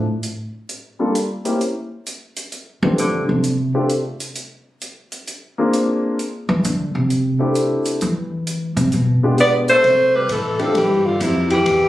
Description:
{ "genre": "jazz, small-group swing and bop", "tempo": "131 BPM", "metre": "4/4", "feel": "swing 66% on 8ths", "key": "C major", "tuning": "A4 = 440 Hz", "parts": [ { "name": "warm concert grand piano", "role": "accompaniment", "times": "0.0-10.7 s", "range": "G3 to A4", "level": "-19 LUFS", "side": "left 1 dB", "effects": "none" }, { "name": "upright bass", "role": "bass", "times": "0.0, 2.8-3.7, 6.5-11.9 s", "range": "E2 to E3", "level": "-20 LUFS", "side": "equal", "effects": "none" }, { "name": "compact cocktail drum kit", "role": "drums", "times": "0.2-11.8 s", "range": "hi-hat, kick drum, ride cymbal", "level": "-29 LUFS", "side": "equal", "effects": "none" }, { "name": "breathy alto saxophone", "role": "melody", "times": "9.4-11.9 s", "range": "E4 to D5", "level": "-15 LUFS", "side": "equal", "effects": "none" }, { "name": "warm tenor saxophone", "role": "second line", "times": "9.4-11.9 s", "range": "C3 to B3", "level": "-22 LUFS", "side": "right 1 dB", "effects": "none" } ], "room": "light reverb", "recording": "recorded on a phone in the room, club reverb", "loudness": "-16 LUFS", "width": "side -15 dB against mid", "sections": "0.0-9.8 A section; 9.8-11.9 B section", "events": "upright bass solo 0.0-9.8", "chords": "0.0 N.C.; 0.7 Gm9; 1.6 N.C.; 2.5 F69; 4.4 Bb9; 6.2 C69; 8.9 G7b9; 9.8 C6", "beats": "0.24 | 0.70 1.15 1.61 2.07 | 2.53 2.99 3.44 3.90 | 4.36 4.82 5.27 5.73 | 6.19 6.64 7.10 7.55 | 8.01 8.47 8.92 9.38 | 9.84 10.29 10.75 11.21 | 11.66" }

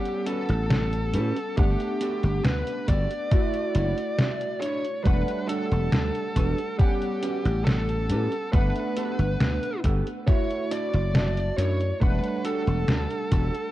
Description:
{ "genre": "vaporwave", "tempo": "69 BPM", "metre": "4/4", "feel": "straight", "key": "E dorian", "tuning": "A4 = 442 Hz", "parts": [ { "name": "bluesy overdriven lead guitar", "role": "melody", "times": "0.0-13.7 s", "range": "G4 to D5", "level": "-30 LUFS", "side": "left 1 dB", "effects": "distortion, tape echo" }, { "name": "warbly lo-fi synth keys", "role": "accompaniment", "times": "0.0-13.7 s", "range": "G3 to F#5", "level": "-31 LUFS", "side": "right 2 dB", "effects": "wide subtle chorus, tape echo" }, { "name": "detuned 8-bit digital drum machine", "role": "drums", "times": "0.1-13.7 s", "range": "hi-hat, snare drum", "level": "-27 LUFS", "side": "equal", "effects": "overdrive" }, { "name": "mellow electric guitar", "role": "riff", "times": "0.3-13.5 s", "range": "B3 to A5", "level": "-34 LUFS", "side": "right 2 dB", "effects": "lush chorus" }, { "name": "dry thumbed slap bass", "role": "bass", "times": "0.5-13.5 s", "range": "E1 to A2", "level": "-25 LUFS", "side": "equal", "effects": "none" }, { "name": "electronic kick drum", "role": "drums", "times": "1.6-13.5 s", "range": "none", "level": "-23 LUFS", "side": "equal", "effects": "overdrive" } ], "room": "digital ambience", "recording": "dark, warm production, cassette tape", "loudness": "-22 LUFS", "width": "side -15 dB against mid", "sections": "0.0-13.7 A section", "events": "clean electric guitar fill 3.3-5.1, 10.7-12.0", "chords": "0.0 A13; 1.6 Gmaj9; 3.3 Dmaj9/F#; 5.1 Em11; 6.8 A13; 8.5 Gmaj9; 10.3 Dmaj9; 12.0 Em11", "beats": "0.71 | 1.58 2.45 3.32 4.19 | 5.06 5.93 6.80 7.67 | 8.54 9.40 10.27 11.14 | 12.01 12.88" }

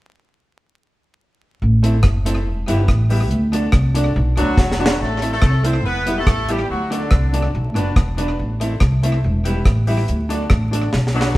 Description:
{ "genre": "ska", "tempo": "142 BPM", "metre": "4/4", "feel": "straight", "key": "A dorian", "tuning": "A4 = 440 Hz", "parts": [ { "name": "upright bass", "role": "bass", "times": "1.6-11.4 s", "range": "E1 to D2", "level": "-18 LUFS", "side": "equal", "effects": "none" }, { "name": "hollow-body jazz guitar", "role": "accompaniment", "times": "1.8-11.3 s", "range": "F#3 to E4", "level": "-26 LUFS", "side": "right 2 dB", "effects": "none" }, { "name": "clear upright piano", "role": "stabs", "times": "1.8-11.3 s", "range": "D4 to E5", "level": "-27 LUFS", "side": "left 2 dB", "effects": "none" }, { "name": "deep reggae drum kit", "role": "drums", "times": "1.8-11.4 s", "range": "hi-hat, kick drum, rim click, snare drum", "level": "-18 LUFS", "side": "equal", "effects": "tape echo" }, { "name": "clear horn section", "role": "melody", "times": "4.4-7.5, 11.2-11.4 s", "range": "D3 to C5", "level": "-23 LUFS", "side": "left 1 dB", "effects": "none" } ], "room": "moderate stone room reverb, RT60 1.2 s", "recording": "band playing live in one room, vinyl crackle", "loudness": "-15 LUFS", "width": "side -17 dB against mid", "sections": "1.6-5.0 A section; 5.0-11.4 B section", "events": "drum fill 4.6-5.0, 10.9-11.4", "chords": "1.6 Am; 2.5 Em; 3.3 D; 4.2 Bm; 5.0 Am; 5.8 Em; 6.7 D; 7.5 Bm; 8.4 Am; 9.2 Em; 10.1 D", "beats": "| 1.61 2.04 2.46 2.88 | 3.31 3.73 4.15 4.58 | 5.00 5.42 5.84 6.27 | 6.69 7.11 7.54 7.96 | 8.38 8.81 9.23 9.65 | 10.08 10.50 10.93 11.35" }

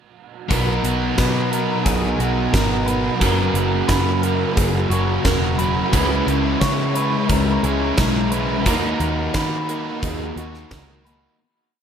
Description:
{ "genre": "rock, shoegaze and dream pop", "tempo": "88 BPM", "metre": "4/4", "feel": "straight", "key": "B major", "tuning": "A4 = 441 Hz", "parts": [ { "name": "electric guitar through a small old amp", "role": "arpeggios", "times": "0.5-11.4 s", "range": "F#4 to B5", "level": "-26 LUFS", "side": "equal", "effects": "analog chorus, diffuse ambient delay" }, { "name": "overdriven electric guitar", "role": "riff", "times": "0.5-11.4 s", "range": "F#2 to F#4", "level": "-25 LUFS", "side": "right 7 dB", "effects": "reverse reverb" }, { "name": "overdriven electric guitar", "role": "riff", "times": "0.5-11.4 s", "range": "F#2 to D#4", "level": "-25 LUFS", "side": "equal", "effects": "lush chorus" }, { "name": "thick fuzz guitar", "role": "riff", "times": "0.5-11.4 s", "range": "F#2 to D#4", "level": "-26 LUFS", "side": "left 8 dB", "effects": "distortion, wide subtle chorus" }, { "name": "vintage muted picked electric bass", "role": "bass", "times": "0.5-11.3 s", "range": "E1 to D#3", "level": "-24 LUFS", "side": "equal", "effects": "none" }, { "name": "gated 80s drum kit", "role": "drums", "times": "0.5-11.2 s", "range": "hi-hat, kick drum, snare drum", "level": "-22 LUFS", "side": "equal", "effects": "none" } ], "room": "moderate huge ambient reverb, RT60 7.7 s", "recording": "dreamy mix soaked in reverb", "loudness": "-17 LUFS", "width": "side -8 dB against mid", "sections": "0.5-11.4 verse", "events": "fade-out 8.7-11.4", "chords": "0.5 Bmaj7; 3.2 F#; 5.9 C#m7; 8.7 D#m7", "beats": "| 0.51 1.18 1.86 2.53 | 3.21 3.89 4.57 5.25 | 5.93 6.61 7.29 7.98 | 8.66 9.34 10.03 10.71" }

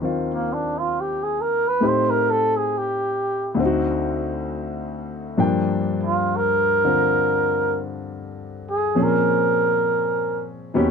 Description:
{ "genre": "jazz", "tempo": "67 BPM", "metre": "4/4", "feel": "swing 66% on 8ths", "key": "unclear", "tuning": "A4 = 442 Hz", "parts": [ { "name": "warm grand piano", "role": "accompaniment", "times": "0.0-10.9 s", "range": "D2 to G5", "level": "-23 LUFS", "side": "left 3 dB", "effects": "none" }, { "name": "breathy trumpet", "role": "melody", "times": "0.3-10.5 s", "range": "Bb3 to C5", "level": "-20 LUFS", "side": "right 2 dB", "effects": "none" } ], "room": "little or no reverb", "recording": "close, detailed microphones", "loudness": "-19 LUFS", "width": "side -6 dB against mid", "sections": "0.0-10.9 A section", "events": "trumpet solo 0.0-10.9", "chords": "0.0 Ebmaj9; 1.8 Am7b5; 3.6 D7b9; 5.4 Gm7; 9.0 Bbm7", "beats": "0.03 0.92 | 1.82 2.71 3.60 4.49 | 5.38 6.27 7.16 8.06 | 8.96 9.85 10.74" }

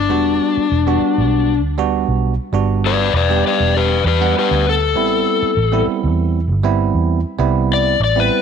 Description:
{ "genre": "straight-eighth soul blues", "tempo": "99 BPM", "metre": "4/4", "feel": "swing 54% on 16ths", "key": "E minor", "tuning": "A4 = 440 Hz", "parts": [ { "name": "overdriven slide guitar", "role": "melody", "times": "0.0-8.4 s", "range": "D4 to D5", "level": "-16 LUFS", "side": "left 10 dB", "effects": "none" }, { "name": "vintage muted fingered electric bass", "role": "bass", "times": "0.0-8.3 s", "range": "E1 to E2", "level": "-18 LUFS", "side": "right 1 dB", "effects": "none" }, { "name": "bell-like tine electric piano", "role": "accompaniment", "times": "0.1-8.4 s", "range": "G3 to F#5", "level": "-20 LUFS", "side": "right 11 dB", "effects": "none" } ], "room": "moderate echo chamber reverb, RT60 1.8 s", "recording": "1960s-style stereo with parts hard left and right", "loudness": "-14 LUFS", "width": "side -7 dB against mid", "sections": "0.0-8.4 A section", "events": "electric slide guitar solo 0.0-8.4", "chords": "0.1 Em9; 5.0 Am9", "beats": "| 0.10 0.70 1.31 1.92 | 2.53 3.13 3.74 4.35 | 4.96 5.57 6.17 6.78 | 7.39 8.00" }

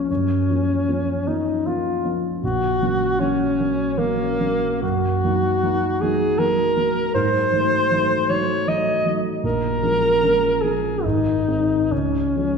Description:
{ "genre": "classical, romantic duo for alto saxophone and grand piano", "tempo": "66-80 BPM", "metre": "3/4", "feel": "rubato", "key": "unclear", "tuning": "A4 = 445 Hz", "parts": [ { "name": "warm alto saxophone", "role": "melody", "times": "0.0-12.6 s", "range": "Bb3 to Eb5", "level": "-20 LUFS", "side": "left 2 dB", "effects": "none" }, { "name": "dark concert grand piano", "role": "accompaniment", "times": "0.0-12.6 s", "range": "Ab1 to Eb4", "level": "-22 LUFS", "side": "right 2 dB", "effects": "none" } ], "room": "wet concert hall reverb, RT60 1.9 s", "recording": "heard from further back in the room", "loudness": "-18 LUFS", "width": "side -5 dB against mid", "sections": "0.0-12.6 A section", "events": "none", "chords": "0.1 Gbmaj7; 2.4 Gb/Bb; 4.8 Ebm/Gb; 7.1 Ab7b9; 9.4 Bbm7; 11.0 Ab; 11.9 Db", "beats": "| 0.09 0.88 1.66 | 2.42 3.20 3.97 | 4.82 5.62 6.38 | 7.14 7.91 8.67 | 9.44 10.22 11.04 | 11.91" }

